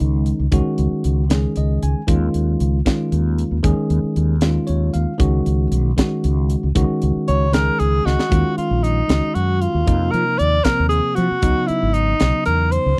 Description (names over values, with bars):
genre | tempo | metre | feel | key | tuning
electric jazz fusion | 77 BPM (dotted quarters) | 6/8 | straight | Eb dorian from 8.3 s | A4 = 440 Hz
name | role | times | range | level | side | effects
bell-like tine electric piano | accompaniment | 0.0-13.0 s | C3 to Ab5 | -24 LUFS | equal | none
mellow fretless electric bass | bass | 0.0-13.0 s | Ab1 to F3 | -21 LUFS | equal | lush chorus
tight funk drum kit | drums | 0.3-12.8 s | hi-hat, kick drum, snare drum | -23 LUFS | equal | none
bright alto saxophone | melody | 7.3-13.0 s | Eb4 to D5 | -22 LUFS | equal | none
room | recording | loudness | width
little or no reverb | dry, close 1970s-style studio recording | -18 LUFS | mono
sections
0.0-8.3 A section; 8.3-13.0 B section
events
tine electric piano fill 1.3-2.1, 4.4-5.2, 7.5-8.3; drum fill 8.1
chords
0.0 Dbsus4; 2.1 Eb9sus4; 5.2 Dbsus4; 8.3 Ebm11; 9.9 F7sus4; 11.4 Dbm11